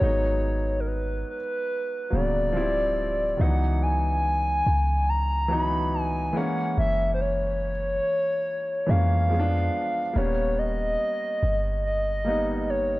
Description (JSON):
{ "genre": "contemporary R&B", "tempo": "71 BPM", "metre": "4/4", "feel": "swing 54% on 16ths", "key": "C# dorian", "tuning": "A4 = 440 Hz", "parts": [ { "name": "hollow clarinet-like synth lead", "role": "melody", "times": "0.0-13.0 s", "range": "A#4 to B5", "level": "-26 LUFS", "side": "equal", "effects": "chorus, tape echo" }, { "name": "warm grand piano", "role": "accompaniment", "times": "0.0-13.0 s", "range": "C#3 to E4", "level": "-30 LUFS", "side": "equal", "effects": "none" }, { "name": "clean 808-style bass", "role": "bass", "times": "0.0-13.0 s", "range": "D1 to E#2", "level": "-26 LUFS", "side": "equal", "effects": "tube saturation" } ], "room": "little or no reverb", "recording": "dry, gritty hardware recording", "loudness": "-23 LUFS", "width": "side -18 dB against mid", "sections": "0.0-13.0 A section", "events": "none", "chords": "0.0 G#m9; 2.5 Dm11; 3.4 C#m11; 6.3 F#9; 9.3 Fdim7; 10.2 D#7b13", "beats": "| 0.01 0.86 1.70 2.55 | 3.39 4.24 5.08 5.93 | 6.77 7.62 8.46 9.31 | 10.15 11.00 11.84 12.69" }